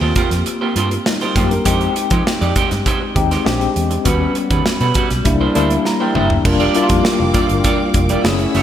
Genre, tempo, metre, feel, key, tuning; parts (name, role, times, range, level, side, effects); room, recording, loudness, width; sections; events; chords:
polished 1980s jazz-funk pop; 100 BPM; 4/4; straight; A4 = 440 Hz
tine electric piano; accompaniment; 0.0-8.6 s; G3 to Bb5; -18 LUFS; left 3 dB; fast stereo tremolo, analog chorus
electric guitar at the edge of break-up; riff; 0.0-8.6 s; G3 to D5; -21 LUFS; right 5 dB; lush chorus
vintage muted fingered electric bass; bass; 0.0-8.6 s; F1 to F3; -19 LUFS; equal
modern studio drum kit; drums; 0.2-8.6 s; crash cymbal, hi-hat, kick drum, snare drum, toms; -19 LUFS; right 1 dB; gated reverb
warm studio string section; sustained chords; 6.5-8.6 s; Bb4 to Fb6; -25 LUFS; right 2 dB
moderate lush hall reverb, RT60 2.8 s; bright 1980s-style digital production; -14 LUFS; side -10 dB against mid
0.0-6.5 A section; 6.5-8.6 B section
tine electric piano fill 5.6-6.5; drum fill 5.9-6.5
0.0 Eb69; 1.7 Fm9; 3.5 Bb13; 4.1 Eb7alt; 5.3 C9; 6.5 Gm7/F